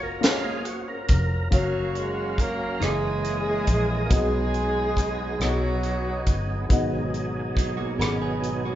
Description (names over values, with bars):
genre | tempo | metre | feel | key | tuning
slow gospel | 46 BPM (dotted quarters) | 6/8 | straight | F# major | A4 = 440 Hz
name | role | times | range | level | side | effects
dark upright piano | accompaniment | 0.0-8.8 s | G#2 to B5 | -31 LUFS | left 3 dB | none
overdriven tonewheel organ | sustained chords | 0.0-8.8 s | B2 to E#5 | -31 LUFS | right 2 dB | fast rotary speaker, chorus vibrato
vintage muted fingered electric bass | bass | 0.0-8.8 s | E#1 to B1 | -28 LUFS | equal | none
tight funk drum kit | drums | 0.2-8.6 s | hi-hat, kick drum, rim click, snare drum | -23 LUFS | equal | none
breathy tenor saxophone | melody | 1.5-6.4 s | F#3 to A#3 | -29 LUFS | right 3 dB | none
clear saxophone section | melody | 1.5-6.7 s | A#3 to A#4 | -31 LUFS | left 3 dB | none
direct-recorded clean electric guitar | second line | 7.6-8.8 s | F#3 to A#4 | -32 LUFS | right 6 dB | none
room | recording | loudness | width
moderate recital hall reverb, RT60 1.6 s | recorded in a church or concert hall, nothing above 7.7 kHz | -22 LUFS | side -12 dB against mid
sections
0.0-1.5 A section; 1.5-8.8 B section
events
tonewheel organ solo 0.0-1.5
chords
0.0 F#maj7; 2.8 F#13; 4.1 B6; 6.7 G#m7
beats
0.23 | 1.52 2.82 | 4.11 5.41 | 6.71 8.00